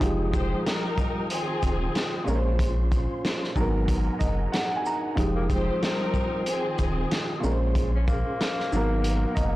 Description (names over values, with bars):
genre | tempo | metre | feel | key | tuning
hip hop, boom-bap hip-hop | 93 BPM | 4/4 | swing 58% on 16ths | F minor | A4 = 440 Hz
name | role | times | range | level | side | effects
dark grand piano | accompaniment | 0.0-9.6 s | Ab2 to Bb5 | -29 LUFS | right 1 dB | cassette tape, high-pass filter, low-pass filter
mellow tonewheel organ | sustained chords | 0.0-9.6 s | Bb3 to Eb6 | -35 LUFS | equal | chorus vibrato, fast rotary speaker, high-pass filter, low-pass filter
warm sub bass | bass | 0.0-9.6 s | Eb1 to Bb1 | -26 LUFS | equal | transformer saturation
crunchy breakbeat drum kit | drums | 0.0-9.5 s | hi-hat, kick drum, shaker, snare drum | -28 LUFS | equal | none
warm studio string section | stabs | 0.3-7.3 s | Eb3 to C5 | -31 LUFS | left 1 dB | high-pass filter, low-pass filter, tape echo
breathy tenor saxophone | melody | 5.4-9.6 s | Bb3 to Db4 | -31 LUFS | left 2 dB | high-pass filter, low-pass filter
room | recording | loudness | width
small room ambience | blown-out, overdriven recording, vinyl crackle, overdrive | -23 LUFS | side -17 dB against mid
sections
0.0-9.6 A section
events
none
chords
0.0 Fm9; 2.3 Bbm9; 3.6 Abm9; 5.2 Fm9; 7.4 Bbm9; 8.7 Abm9